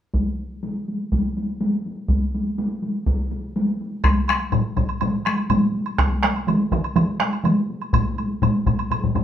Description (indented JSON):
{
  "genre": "japanese traditional, taiko drum ensemble",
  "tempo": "123 BPM",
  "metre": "4/4",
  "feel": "straight",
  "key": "none",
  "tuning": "none",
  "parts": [
    { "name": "solo taiko drums", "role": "percussion", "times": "0.1-8.8 s", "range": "none", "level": "-24 LUFS", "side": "equal", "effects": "none" },
    { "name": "taiko ensemble", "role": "percussion", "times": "0.1-9.2 s", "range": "none", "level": "-24 LUFS", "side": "equal", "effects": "none" },
    { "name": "taiko ensemble", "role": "percussion", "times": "4.0-9.2 s", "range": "none", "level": "-22 LUFS", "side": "left 3 dB", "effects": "none" },
    { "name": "woodblock", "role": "percussion", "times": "4.0-9.2 s", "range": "none", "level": "-30 LUFS", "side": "right 4 dB", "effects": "none" },
    { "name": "taiko ensemble", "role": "percussion", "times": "6.0-7.6 s", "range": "none", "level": "-21 LUFS", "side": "right 3 dB", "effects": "none" }
  ],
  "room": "wet studio reverb, RT60 0.6 s",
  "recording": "band playing live in one room",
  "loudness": "-20 LUFS",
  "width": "side -10 dB against mid",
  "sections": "0.1-4.0 A section; 4.0-9.2 B section",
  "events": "none",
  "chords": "none",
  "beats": "| 0.14 0.62 1.11 1.60 | 2.09 2.58 3.06 3.55 | 4.04 4.53 5.01 5.50 | 5.99 6.48 6.96 7.45 | 7.94 8.42 8.91"
}